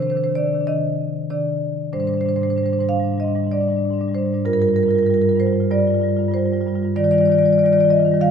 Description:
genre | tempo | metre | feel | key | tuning
classical, contemporary piece for solo marimba | 96 BPM | 4/4 | rubato | C minor | A4 = 440 Hz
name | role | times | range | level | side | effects
marimba with medium hard mallets | solo | 0.0-8.3 s | G2 to F5 | -16 LUFS | equal | none
room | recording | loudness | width
moderate recital hall reverb, RT60 1.6 s | minimal, uncompressed stereo recording | -16 LUFS | side -7 dB against mid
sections
0.0-8.3 A section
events
none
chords
0.0 Cmadd9; 1.9 Abmaj7#11; 4.5 Gm7; 7.0 Ebmaj9

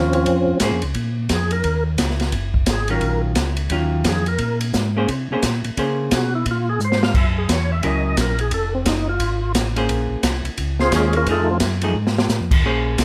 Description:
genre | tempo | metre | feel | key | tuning
soul jazz organ trio | 175 BPM | 4/4 | swing 62% on 8ths | Bb minor | A4 = 442 Hz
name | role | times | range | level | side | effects
percussive tonewheel organ | melody | 0.0-11.6 s | F3 to F5 | -24 LUFS | equal | overdrive, chorus vibrato, slow rotary speaker, plate reverb
mellow tonewheel organ | bass | 0.0-13.0 s | F1 to Db3 | -24 LUFS | equal | chorus vibrato, slow rotary speaker
open jazz drum kit | drums | 0.1-13.0 s | crash cymbal, hi-hat, kick drum, ride cymbal, snare drum | -24 LUFS | equal | none
vintage hollow-body jazz guitar | accompaniment | 0.6-0.8, 2.9-13.0 s | Eb3 to C5 | -25 LUFS | equal | none
room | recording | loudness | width
light reverb | none | -20 LUFS | mono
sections
0.0-12.6 A section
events
tonewheel organ solo 0.0-12.6; drum fill 6.8-7.1, 12.0-12.3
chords
0.0 Bbm9; 1.6 Ebm9; 4.4 Bbm9; 7.1 Gb7; 8.5 F; 9.9 Bbm9; 11.3 F7#9

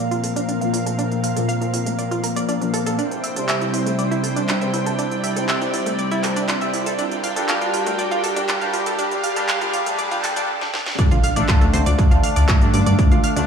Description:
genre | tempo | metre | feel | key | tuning
melodic techno | 120 BPM | 4/4 | straight | D minor | A4 = 439 Hz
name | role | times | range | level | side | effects
warm analog pad | sustained chords | 0.0-13.5 s | C4 to G5 | -29 LUFS | right 2 dB | chorus, vintage 12-bit sampler grit, sidechain pumping
analog pluck | arpeggios | 0.0-13.4 s | A3 to F6 | -25 LUFS | right 2 dB | chorus, sidechain pumping, dub echo
analog synth brass | stabs | 0.0-13.5 s | Bb2 to G4 | -23 LUFS | left 1 dB | chorus, sidechain pumping, dub echo
riser and impact | sound effects | 0.0-13.0 s | none | -30 LUFS | right 1 dB | none
plucky analog bass | bass | 0.1-13.4 s | F1 to Bb2 | -23 LUFS | equal | none
techno drum kit | drums | 0.1-13.5 s | handclaps, hi-hat, snare drum | -27 LUFS | right 1 dB | none
electronic kick drum | drums | 11.0-13.1 s | none | -16 LUFS | equal | none
room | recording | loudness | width
moderate lush hall reverb, RT60 2.2 s | high-pass filter, small room ambience | -18 LUFS | side -7 dB against mid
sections
0.0-11.0 A section; 11.0-13.5 B section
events
build-up 0.0-11.0; riser 0.0-10.5; filter sweep on synth pluck 0.0-11.0; filter sweep on analog polysynth 0.0-11.0; filter sweep 0.0-11.0; stop 10.5-11.0; drum fill 10.6-11.0; drop 11.0-13.5; impact 11.0-13.0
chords
0.0 Bbsus2; 3.0 C; 7.0 Gm/Bb; 11.0 Dm

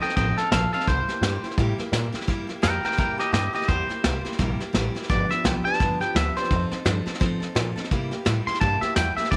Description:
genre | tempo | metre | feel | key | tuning
rockabilly | 170 BPM | 4/4 | swing 59% on 8ths | C mixolydian | A4 = 440 Hz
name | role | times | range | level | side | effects
twangy electric guitar | melody | 0.0-9.4 s | G4 to C6 | -28 LUFS | equal | tape echo
picked steel-string acoustic guitar | accompaniment | 0.0-9.4 s | G2 to A4 | -32 LUFS | equal | none
upright bass | bass | 0.0-9.4 s | G1 to C3 | -30 LUFS | equal | none
vintage brush drum kit | drums | 0.0-9.4 s | hi-hat, kick drum, snare drum | -29 LUFS | equal | none
room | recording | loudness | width
light reverb, small room reverb | none | -24 LUFS | mono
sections
0.0-9.4 A section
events
none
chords
0.0 F7; 0.9 C7; 5.1 G7; 6.5 F7; 7.9 C7

